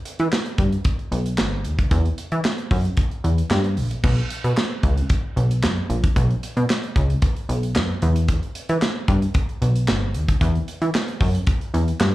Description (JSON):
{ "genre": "early-eighties boogie funk", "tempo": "113 BPM", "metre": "4/4", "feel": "straight", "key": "B major", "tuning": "A4 = 440 Hz", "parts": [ { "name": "modern studio drum kit", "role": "drums", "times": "0.1-12.1 s", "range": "crash cymbal, handclaps, hi-hat, kick drum, snare drum", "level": "-22 LUFS", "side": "equal", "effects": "none" }, { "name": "plucky analog bass", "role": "bass", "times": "0.2-12.1 s", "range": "G1 to E3", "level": "-20 LUFS", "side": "equal", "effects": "none" } ], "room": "little or no reverb", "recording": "live gig heard through the venue's PA, club reverb", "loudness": "-19 LUFS", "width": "side -16 dB against mid", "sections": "0.0-4.0 A section; 4.0-12.1 A section", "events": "none", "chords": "none", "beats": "0.32 0.85 1.38 | 1.91 2.44 2.98 3.51 | 4.04 4.57 5.10 5.63 | 6.16 6.69 7.22 7.75 | 8.29 8.82 9.35 9.88 | 10.41 10.94 11.47 12.00" }